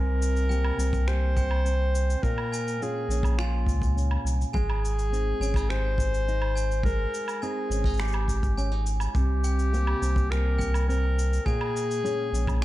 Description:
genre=folktronica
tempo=104 BPM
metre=4/4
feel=straight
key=Ab major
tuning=A4 = 440 Hz
part: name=mellow clarinet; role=melody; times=0.0-12.6 s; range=F4 to C5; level=-31 LUFS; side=left 2 dB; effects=digital delay
part: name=nylon-string guitar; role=arpeggios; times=0.0-12.6 s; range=Bb2 to Ab4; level=-34 LUFS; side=equal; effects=vintage 12-bit sampler grit
part: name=warm sub bass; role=bass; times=0.0-12.6 s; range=Ab1 to Db2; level=-25 LUFS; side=equal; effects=none
part: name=electronic shaker, woodblock and finger snaps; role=drums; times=0.2-12.6 s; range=none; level=-38 LUFS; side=right 1 dB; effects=none
part: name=glockenspiel with brass mallets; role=second line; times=0.5-12.6 s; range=G5 to Ab5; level=-38 LUFS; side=right 7 dB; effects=digital delay
part: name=kick drum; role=drums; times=0.9-12.6 s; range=none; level=-28 LUFS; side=equal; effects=none
room=studio reverb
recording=dark, warm production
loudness=-24 LUFS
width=side -16 dB against mid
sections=0.0-12.6 A section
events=none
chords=0.0 C5; 2.2 Bbm7; 4.5 Abmaj7; 9.2 C5; 11.5 Bbm7

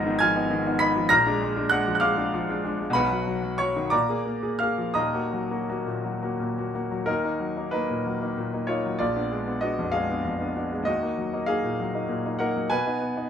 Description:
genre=classical, romantic character piece for solo piano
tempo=55-67 BPM (dotted quarters)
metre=6/8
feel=rubato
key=Eb minor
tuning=A4 = 440 Hz
part: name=bright grand piano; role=solo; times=0.0-13.3 s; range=Eb1 to Cb7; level=-23 LUFS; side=equal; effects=none
room=light reverb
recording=minimal, uncompressed stereo recording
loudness=-23 LUFS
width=side -8 dB against mid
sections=0.0-7.1 A section; 7.1-13.3 B section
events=none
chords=0.0 Fm7b5; 1.1 Bb7; 3.0 B; 3.9 Bb7; 5.0 Ebm; 9.0 Bb7b9 (rootless); 10.9 Ebm; 12.7 B

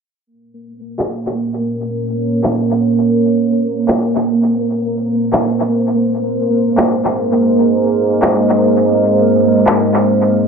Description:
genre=half-time drum and bass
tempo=free time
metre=none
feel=none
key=Bb minor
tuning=A4 = 440 Hz
part: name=deep dark ambient pad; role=sustained chords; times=1.3-10.5 s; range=Ab3 to Eb5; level=-15 LUFS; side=right 1 dB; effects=chorus, built-in reverb, vintage 12-bit sampler grit
part: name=pulsing gated texture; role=texture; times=0.8-10.5 s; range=Bb3 to Bb4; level=-17 LUFS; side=right 2 dB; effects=chorus, built-in reverb
part: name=electronic handclaps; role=drums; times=1.0-10.0 s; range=none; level=-18 LUFS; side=left 1 dB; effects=analog delay
room=moderate plate reverb, RT60 1.0 s, digital ambience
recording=echo-heavy mix, low-pass filter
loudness=-12 LUFS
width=side -6 dB against mid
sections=0.3-10.5 A section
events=filter sweep 0.3-10.5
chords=0.3 Bbmadd9; 6.0 Ab

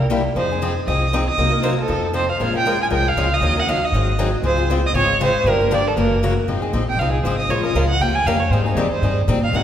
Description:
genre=acoustic string swing (jazz manouche)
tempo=236 BPM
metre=4/4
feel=swing 56% on 8ths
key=F minor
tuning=A4 = 438 Hz
part: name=rich violin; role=melody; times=0.0-9.6 s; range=Eb4 to Ab5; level=-20 LUFS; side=right 2 dB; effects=none
part: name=picked steel-string acoustic guitar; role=accompaniment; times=0.0-9.6 s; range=C3 to Bb4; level=-21 LUFS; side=left 2 dB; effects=none
part: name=upright bass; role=bass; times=0.0-9.6 s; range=Gb1 to Bb2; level=-21 LUFS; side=equal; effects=none
room=wet concert hall reverb, RT60 1.7 s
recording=recorded in a church or concert hall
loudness=-16 LUFS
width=side -10 dB against mid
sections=0.0-6.5 A section; 6.5-9.6 B section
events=violin solo 6.5-9.6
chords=0.4 Fm7; 1.4 Cm7b5; 1.9 F7; 2.4 Bbm7; 3.4 Ebm7; 3.9 Ab7; 4.4 Dbmaj7; 5.5 Gm7; 6.0 Gb7; 6.5 Fm7; 7.5 Bbm7; 8.0 Eb7; 8.5 Abmaj9

